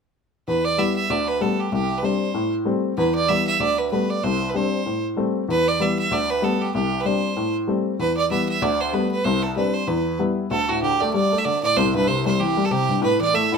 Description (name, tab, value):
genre	celtic folk, Celtic reel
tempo	191 BPM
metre	4/4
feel	swing 57% on 8ths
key	E minor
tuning	A4 = 441 Hz
part	bright fiddle	melody	0.5-13.6 s	F#4 to E5	-22 LUFS	right 5 dB	none
part	warm upright piano	accompaniment	0.5-13.6 s	C2 to E4	-22 LUFS	left 3 dB	none
room	moderate studio reverb, RT60 0.7 s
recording	minimal, uncompressed stereo recording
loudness	-19 LUFS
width	side -5 dB against mid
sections	0.5-10.5 A section; 10.5-13.6 B section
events	none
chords	0.5 Em; 1.1 Gadd9/D; 1.7 Csus2; 2.4 Am7; 3.0 Em; 3.6 Gadd9/D; 4.2 Csus2; 4.9 Am7; 5.5 Em; 6.1 Gadd9/D; 6.7 Csus2; 7.4 Am7; 8.0 Em; 8.6 Gadd9/D; 9.3 Csus2; 9.9 Em; 10.5 Dsus4; 11.8 C; 13.0 Asus2